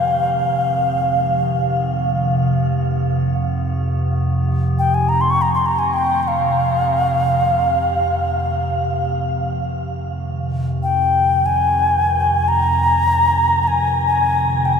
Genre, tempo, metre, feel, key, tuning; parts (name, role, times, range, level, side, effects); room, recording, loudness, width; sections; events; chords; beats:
world meditative, free-time meditation music; free time; F minor; A4 = 440 Hz
alto ocarina; melody; 0.0-14.8 s; F5 to Db6; -17 LUFS; left 1 dB; shimmer reverb, ping-pong delay
metallic inharmonic drone; drone; 0.0-14.8 s; F2 to C3; -20 LUFS; right 1 dB; chorus, built-in reverb, phaser
wet huge ambient reverb, RT60 8.0 s; dreamy mix soaked in reverb; -16 LUFS; side -6 dB against mid
0.0-9.6 A section; 9.6-14.8 A section
free time